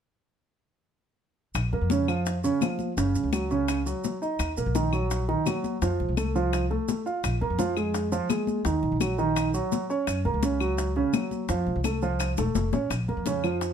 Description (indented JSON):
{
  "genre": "latin, Cuban son and guajira",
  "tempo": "169 BPM",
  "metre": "4/4",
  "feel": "straight",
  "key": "Bb minor",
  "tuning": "A4 = 444 Hz",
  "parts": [
    { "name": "upright bass", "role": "bass", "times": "1.5-13.7 s", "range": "Eb1 to Gb2", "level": "-28 LUFS", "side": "left 1 dB", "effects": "none" },
    { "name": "congas", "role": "percussion", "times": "1.5-13.7 s", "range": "none", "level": "-33 LUFS", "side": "left 7 dB", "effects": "none" },
    { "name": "maracas", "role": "percussion", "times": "1.5-13.7 s", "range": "none", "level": "-40 LUFS", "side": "right 4 dB", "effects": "none" },
    { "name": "bongos", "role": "percussion", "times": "1.6-13.7 s", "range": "none", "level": "-33 LUFS", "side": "left 10 dB", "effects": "none" },
    { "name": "claves", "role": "percussion", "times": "1.6-13.6 s", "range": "none", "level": "-37 LUFS", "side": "left 10 dB", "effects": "none" },
    { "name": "dark concert grand piano", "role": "arpeggios", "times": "1.7-13.7 s", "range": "Db3 to F5", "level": "-27 LUFS", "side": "right 3 dB", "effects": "none" }
  ],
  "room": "light reverb",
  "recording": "none",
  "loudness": "-24 LUFS",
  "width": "side -8 dB against mid",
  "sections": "1.5-12.9 A section",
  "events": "drum fill 12.4-12.9",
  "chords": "1.5 Bbm; 3.0 Gb5; 4.4 Ebm; 5.8 F; 7.2 Bb5; 8.7 Ebm; 10.1 Gb; 11.5 F; 12.9 Bbm"
}